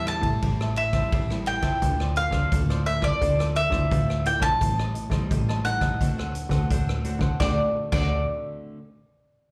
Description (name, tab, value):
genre	samba and choro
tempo	86 BPM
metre	4/4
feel	straight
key	unclear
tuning	A4 = 440 Hz
part	mandolin	melody	0.0-8.2 s	D5 to A5	-29 LUFS	equal	slapback echo
part	cavaquinho	accompaniment	0.0-8.2 s	D4 to A5	-40 LUFS	equal	slapback echo
part	nylon-string guitar	accompaniment	0.0-8.8 s	A2 to F#4	-35 LUFS	equal	slapback echo
part	plucky analog bass	bass	0.0-8.2 s	A1 to A2	-29 LUFS	equal	none
part	swinging big-band drum kit	drums	0.1-8.1 s	crash cymbal, hi-hat, kick drum, ride cymbal, rim click, snare drum	-30 LUFS	equal	none
room	little or no reverb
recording	live gig heard through the venue's PA, club reverb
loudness	-24 LUFS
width	mono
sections	0.0-1.8 A section; 1.8-7.4 B section; 7.4-9.5 C section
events	none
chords	0.0 Am7; 1.8 Dm9; 4.6 Am7b5; 6.0 D7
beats	0.43 1.13 | 1.82 2.52 3.22 3.92 | 4.62 5.31 6.01 6.71 | 7.40 8.10